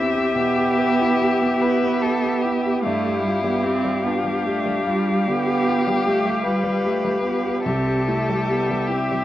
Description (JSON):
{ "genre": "classical, slow romantic movement for piano quintet", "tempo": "47-51 BPM (dotted quarters)", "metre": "12/8", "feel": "rubato", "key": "unclear", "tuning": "A4 = 440 Hz", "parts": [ { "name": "muted violin", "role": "melody", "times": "0.0-9.2 s", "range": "E5 to F5", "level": "-26 LUFS", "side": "left 6 dB", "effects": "none" }, { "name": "muted cello", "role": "second line", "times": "0.0-9.2 s", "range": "G3 to C4", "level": "-23 LUFS", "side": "right 4 dB", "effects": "none" }, { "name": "muted viola", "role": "accompaniment", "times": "0.0-9.2 s", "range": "G4", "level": "-27 LUFS", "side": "right 1 dB", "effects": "none" }, { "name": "warm concert grand piano", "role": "accompaniment", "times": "0.0-9.2 s", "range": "C2 to B4", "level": "-25 LUFS", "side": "left 1 dB", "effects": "none" }, { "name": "muted violin", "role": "second line", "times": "0.3-9.2 s", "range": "D4 to B4", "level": "-26 LUFS", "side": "left 3 dB", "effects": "none" } ], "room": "moderate studio reverb, RT60 0.5 s", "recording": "worn, warbling old tape, cassette tape, warbly pitch drift", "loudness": "-18 LUFS", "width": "side -13 dB against mid", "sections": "0.0-9.2 A section", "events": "none", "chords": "0.0 Em; 2.8 G7; 7.7 C", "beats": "0.35 1.62 | 2.83 4.05 5.28 6.46 | 7.66 8.90" }